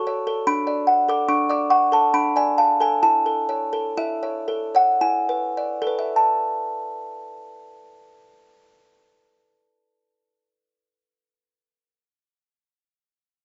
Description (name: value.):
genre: classical, lullaby for music box.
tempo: 50-76 BPM.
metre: 3/4.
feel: straight.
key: A major.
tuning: A4 = 440 Hz.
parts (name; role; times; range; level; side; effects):
music box; solo; 0.0-11.1 s; D4 to D6; -21 LUFS; equal; none.
room: moderate small room reverb, RT60 0.5 s.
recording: dark, warm production, nothing above 7.7 kHz.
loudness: -21 LUFS.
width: mono.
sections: 0.0-6.2 A section; 6.2-9.8 B section.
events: slowing down 0.0-6.2.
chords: 0.5 D6; 2.1 Dm6; 3.0 A/E; 5.0 E7; 6.2 A5.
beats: | 0.47 1.28 2.12 | 3.02 3.97 5.01 | 6.16 7.36 8.56.